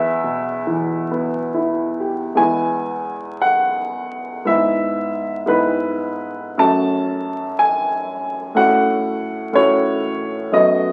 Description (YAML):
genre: classical, romantic nocturne for solo piano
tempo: 44-62 BPM (dotted quarters)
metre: 6/8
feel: rubato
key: E major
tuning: A4 = 440 Hz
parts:
  - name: warm upright piano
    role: solo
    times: 0.0-10.9 s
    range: E2 to A5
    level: -19 LUFS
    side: equal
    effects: none
room: wet large studio reverb, RT60 0.8 s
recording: very old 78 rpm record, vinyl crackle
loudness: -19 LUFS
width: mono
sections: 0.0-2.4 A section; 2.4-10.9 B section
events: none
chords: 0.0 Em; 2.4 E; 4.5 E/G#; 6.6 F#m; 8.6 F#m/A